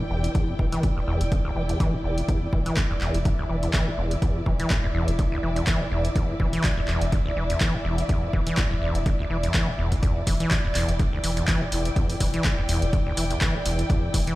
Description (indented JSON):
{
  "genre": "acid house",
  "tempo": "124 BPM",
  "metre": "4/4",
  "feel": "swing 55% on 16ths",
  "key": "E phrygian",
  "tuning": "A4 = 440 Hz",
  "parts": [
    { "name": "acid bass, saw", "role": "riff", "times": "0.0-14.4 s", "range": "D2 to E3", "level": "-28 LUFS", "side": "equal", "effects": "overdrive, sidechain pumping, dub echo" },
    { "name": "dark studio string section", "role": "texture", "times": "0.0-14.4 s", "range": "E4 to G5", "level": "-31 LUFS", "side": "equal", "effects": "sidechain pumping" },
    { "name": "saturated sub bass", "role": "bass", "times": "0.1-14.3 s", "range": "E1", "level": "-28 LUFS", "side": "equal", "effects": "sidechain pumping" },
    { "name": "punchy analog drum machine", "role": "drums", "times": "0.2-14.4 s", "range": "handclaps, hi-hat", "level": "-30 LUFS", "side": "equal", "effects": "overdrive" },
    { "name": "electronic kick drum", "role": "drums", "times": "0.3-14.2 s", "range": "none", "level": "-24 LUFS", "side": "equal", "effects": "overdrive" }
  ],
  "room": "digital ambience",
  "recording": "played on a big sound system in a bare room, stone room reverb",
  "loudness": "-22 LUFS",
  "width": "side -18 dB against mid",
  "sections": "0.0-14.4 A section",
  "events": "filter sweep on acid bass 0.0-14.4",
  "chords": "0.0 Em7",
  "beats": "| 0.35 0.83 1.32 1.80 | 2.29 2.77 3.25 3.74 | 4.22 4.71 5.19 5.67 | 6.16 6.64 7.12 7.61 | 8.09 8.58 9.06 9.54 | 10.03 10.51 10.99 11.48 | 11.96 12.45 12.93 13.41 | 13.90"
}